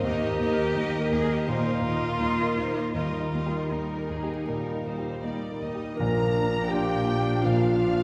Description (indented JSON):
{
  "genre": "cinematic, emotional film score for orchestra",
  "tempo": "78-84 BPM",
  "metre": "4/4",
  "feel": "rubato",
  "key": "Eb major",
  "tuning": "A4 = 440 Hz",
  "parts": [
    { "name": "clear cello", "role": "melody", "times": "0.0-5.2 s", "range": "Eb4 to Ab4", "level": "-34 LUFS", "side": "equal", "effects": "none" },
    { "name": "warm symphonic violin section", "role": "melody", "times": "0.0-8.0 s", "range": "Bb4 to Bb5", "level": "-41 LUFS", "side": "equal", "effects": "none" },
    { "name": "rich symphonic violin section", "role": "second line", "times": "0.0-8.0 s", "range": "Ab4 to Bb5", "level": "-38 LUFS", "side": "equal", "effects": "none" },
    { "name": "clear concert grand piano", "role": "accompaniment", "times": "0.0-8.0 s", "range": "Bb1 to Bb4", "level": "-32 LUFS", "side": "equal", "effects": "none" },
    { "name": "rich symphonic viola section", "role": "accompaniment", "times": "0.0-8.0 s", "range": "F3 to Eb4", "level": "-36 LUFS", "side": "equal", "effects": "none" },
    { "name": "concert harp", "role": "arpeggios", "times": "0.0-8.0 s", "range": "Bb2 to G5", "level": "-36 LUFS", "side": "equal", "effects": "none" },
    { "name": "warm symphonic cello section", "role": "bass", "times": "0.0-8.0 s", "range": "Eb2 to Bb2", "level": "-37 LUFS", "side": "equal", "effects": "none" },
    { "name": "mellow clarinet", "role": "second line", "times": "6.0-8.0 s", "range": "F4 to Bb4", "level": "-29 LUFS", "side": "equal", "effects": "none" },
    { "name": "warm French horn section", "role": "sustained chords", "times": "6.0-8.0 s", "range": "F3 to D4", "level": "-35 LUFS", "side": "equal", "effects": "none" },
    { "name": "rich chamber double bass section", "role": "bass", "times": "6.0-8.0 s", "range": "Bb1", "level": "-36 LUFS", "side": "equal", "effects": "none" },
    { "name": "timpani", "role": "percussion", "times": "6.0-7.0 s", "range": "none", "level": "barely audible", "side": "none", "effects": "none" }
  ],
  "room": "wet scoring stage reverb, RT60 2.1 s",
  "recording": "heard from further back in the room, vinyl crackle",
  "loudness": "-27 LUFS",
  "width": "mono",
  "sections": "0.0-6.0 A section; 6.0-8.0 B section",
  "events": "none",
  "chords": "0.0 Eb; 6.0 Bb",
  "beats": "| 0.04 0.76 1.47 2.19 | 2.95 3.71 4.48 5.24 | 5.99 6.72 7.45"
}